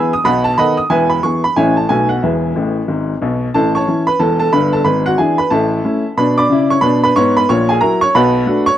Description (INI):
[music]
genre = jazz, stride piano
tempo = 182 BPM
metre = 4/4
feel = swing 62% on 8ths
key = E major, A major from 3.5 s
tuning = A4 = 440 Hz
[part]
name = bright upright piano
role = solo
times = 0.0-8.8 s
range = E1 to D#6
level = -12 LUFS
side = equal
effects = none
[sound]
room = light reverb, small room ambience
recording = dry, close 1970s-style studio recording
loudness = -12 LUFS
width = side -11 dB against mid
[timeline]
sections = 0.0-3.5 A section; 3.5-8.8 B section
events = upright piano fill 2.6-3.5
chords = 0.2 B7; 0.9 E; 1.6 A; 1.9 B7; 2.2 E; 3.5 A; 4.9 E7/G#; 5.5 A; 6.2 Bm; 7.5 F#7/A#; 8.1 Bm7